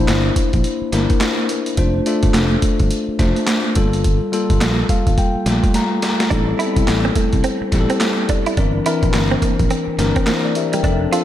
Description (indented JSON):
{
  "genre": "R&B, new jack swing",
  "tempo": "106 BPM",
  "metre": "4/4",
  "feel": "swing 61% on 16ths",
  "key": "unclear",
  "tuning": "A4 = 440 Hz",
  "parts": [
    { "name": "bell-like tine electric piano", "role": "accompaniment", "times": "0.0-11.2 s", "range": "E3 to Bb5", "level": "-19 LUFS", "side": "left 3 dB", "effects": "slapback echo" },
    { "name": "fingered electric bass", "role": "bass", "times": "0.0-11.1 s", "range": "F1 to C2", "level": "-20 LUFS", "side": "equal", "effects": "none" },
    { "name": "boom bap sampler-style drum kit", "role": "drums", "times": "0.1-11.2 s", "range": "handclaps, hi-hat, kick drum, snare drum", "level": "-18 LUFS", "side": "equal", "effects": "none" },
    { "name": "direct-recorded clean electric guitar", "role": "riff", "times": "6.3-11.2 s", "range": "G3 to F4", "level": "-23 LUFS", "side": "right 5 dB", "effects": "wide subtle chorus" }
  ],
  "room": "moderate lush hall reverb, RT60 2.4 s",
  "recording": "big arena sound",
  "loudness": "-15 LUFS",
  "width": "side -12 dB against mid",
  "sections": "0.0-11.2 A section",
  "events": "tine electric piano fill 4.6-6.3; drum fill 5.7-6.3",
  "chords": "0.0 C9/G; 1.8 F6; 3.8 Gm9; 6.3 Am7; 8.6 C9/G",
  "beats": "0.08 0.65 1.21 | 1.78 2.35 2.91 3.48 | 4.04 4.61 5.18 5.74 | 6.31 6.88 7.44 8.01 | 8.57 9.14 9.71 10.27 | 10.84"
}